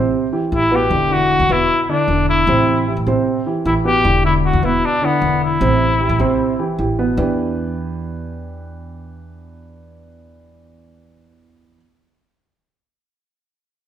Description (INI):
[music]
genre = latin, Cuban son and guajira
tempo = 153 BPM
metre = 4/4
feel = straight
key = E minor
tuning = A4 = 440 Hz
[part]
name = dark concert grand piano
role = arpeggios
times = 0.0-11.8 s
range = B2 to C5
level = -19 LUFS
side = right 1 dB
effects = none
[part]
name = upright bass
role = bass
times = 0.0-11.8 s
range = E1 to A2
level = -22 LUFS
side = right 1 dB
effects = none
[part]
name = breathy trumpet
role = melody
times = 0.5-6.8 s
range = B3 to G4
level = -17 LUFS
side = left 2 dB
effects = none
[sound]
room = moderate large studio reverb, RT60 1.2 s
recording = minimal, uncompressed stereo recording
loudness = -14 LUFS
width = side -10 dB against mid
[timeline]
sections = 0.0-7.2 A section; 7.2-10.3 B section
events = none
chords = 0.0 Am7; 0.9 E5; 2.5 Am7; 4.0 E5; 5.6 Am7; 7.2 Em7